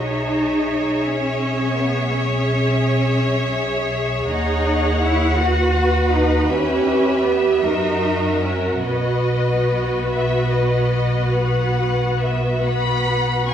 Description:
classical, slow romantic movement for string orchestra; 44-57 BPM (dotted quarters); 12/8; rubato; B major; A4 = 436 Hz
rich studio violin section; melody; 0.0-13.5 s; D#5 to C#6; -26 LUFS; left 3 dB
clear studio violin section; second line; 0.0-13.5 s; A#4 to C#5; -24 LUFS; left 2 dB
rich studio viola section; accompaniment; 0.0-13.5 s; F#4 to G#4; -24 LUFS; right 2 dB
rich studio double bass section; bass; 0.0-13.5 s; B1 to F#2; -22 LUFS; right 1 dB
warm studio cello section; bass; 0.0-13.5 s; B3 to F#4; -24 LUFS; right 1 dB
wet recital hall reverb, RT60 1.5 s; heard from further back in the room; -17 LUFS; side -9 dB against mid
0.0-13.5 A section
0.0 C#m/B; 4.3 B/D#; 6.5 C#m7b5/E; 7.6 F#7; 8.8 B

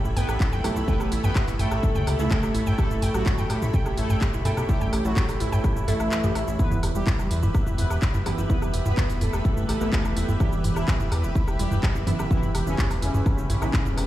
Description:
melodic techno; 126 BPM; 4/4; straight; E dorian; A4 = 440 Hz
lush unison pad; sustained chords; 0.0-14.1 s; G4 to B5; -35 LUFS; equal; chorus, phaser, sidechain pumping
warbly dusty pluck; arpeggios; 0.0-14.0 s; E4 to G5; -34 LUFS; right 1 dB; chorus, sidechain pumping, digital delay
synth brass stab; stabs; 0.0-14.1 s; E3 to A4; -32 LUFS; right 2 dB; chorus, sidechain pumping, digital delay
fat analog bass; bass; 0.0-14.1 s; E1 to A2; -26 LUFS; equal; sidechain pumping
house drum kit; drums; 0.0-14.1 s; handclaps, hi-hat, shaker, toms, woodblock; -28 LUFS; equal; sidechain pumping on perc, sidechain pumping on toms, sidechain pumping on hats
analog synth brass; melody; 0.2-14.1 s; C#3 to B4; -32 LUFS; equal; chorus, tape echo
electronic kick drum; drums; 0.4-13.8 s; -24 LUFS; equal
swell; sound effects; 5.8-6.6 s; -37 LUFS; left 5 dB
light reverb; played on a big sound system in a bare room, stone room reverb; -21 LUFS; side -14 dB against mid
0.0-14.1 A section
kick drops out 6.1-6.6
0.0 Aadd9; 6.6 Em

